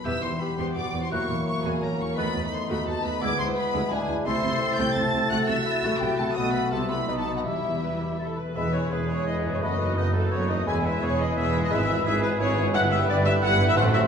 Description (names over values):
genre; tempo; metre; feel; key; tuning
classical, dramatic, fast romantic movement for symphony orchestra; 171 BPM; 3/4; rubato; E minor, E major from 8.6 s; A4 = 440 Hz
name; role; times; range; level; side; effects
warm symphonic violin section; melody; 0.0-14.1 s; F#4 to A6; -33 LUFS; left 4 dB; none
flute section; second line; 0.0-13.9 s; B5 to A6; -35 LUFS; left 1 dB; none
concert harp; arpeggios; 0.0-14.1 s; E2 to E5; -33 LUFS; left 3 dB; none
rich symphonic violin section; second line; 0.1-14.1 s; G#3 to A5; -35 LUFS; left 1 dB; none
warm clarinet; second line; 0.1-14.0 s; F#4 to G#5; -34 LUFS; left 1 dB; none
warm oboe; second line; 0.1-14.1 s; D#4 to F#5; -36 LUFS; right 1 dB; none
clear bassoon; accompaniment; 0.1-13.9 s; E3 to G4; -32 LUFS; right 1 dB; none
warm symphonic viola section; accompaniment; 0.1-14.0 s; G3 to G#5; -30 LUFS; equal; none
warm French horn section; sustained chords; 0.1-14.1 s; F#3 to F#4; -32 LUFS; left 2 dB; none
dark symphonic double bass section; bass; 0.1-14.1 s; E1 to D#2; -32 LUFS; right 2 dB; none
warm symphonic cello section; bass; 0.1-14.1 s; D2 to C3; -33 LUFS; right 2 dB; none
dark trumpet section; stabs; 8.6-14.1 s; B4 to C5; -34 LUFS; right 1 dB; none
warm tuba; bass; 8.6-14.1 s; E1 to A1; -31 LUFS; right 2 dB; none
room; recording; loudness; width
wet recital hall reverb, RT60 1.7 s; recorded in a church or concert hall; -22 LUFS; side -7 dB against mid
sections
0.0-8.6 A section; 8.6-14.1 B section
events
none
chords
0.0 Em; 1.1 F#7/E; 2.2 B7/D#; 3.2 E7/D; 4.3 Am/C; 5.3 F#m7b5/C; 6.4 B7; 6.7 C; 7.1 B7; 7.5 Em; 8.6 E; 9.6 B7/F#; 10.7 E; 11.7 E/G#; 12.7 Em/G